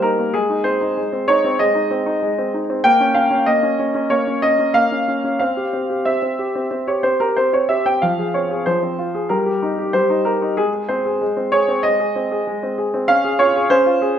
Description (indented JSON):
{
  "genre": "classical-period piano sonatina",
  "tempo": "95 BPM",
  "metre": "4/4",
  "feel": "rubato",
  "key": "unclear",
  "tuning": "A4 = 439 Hz",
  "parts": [
    { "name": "clear grand piano", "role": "solo", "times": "0.0-14.2 s", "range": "F3 to G5", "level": "-16 LUFS", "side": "equal", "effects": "none" }
  ],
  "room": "moderate recital hall reverb, RT60 1.4 s",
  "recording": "none",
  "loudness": "-16 LUFS",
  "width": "side -9 dB against mid",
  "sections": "0.0-14.2 A section",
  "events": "none",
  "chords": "0.3 Ab; 2.8 Bbm; 5.4 C; 8.0 Fm; 9.3 Eb/G; 10.6 Ab; 13.1 Db"
}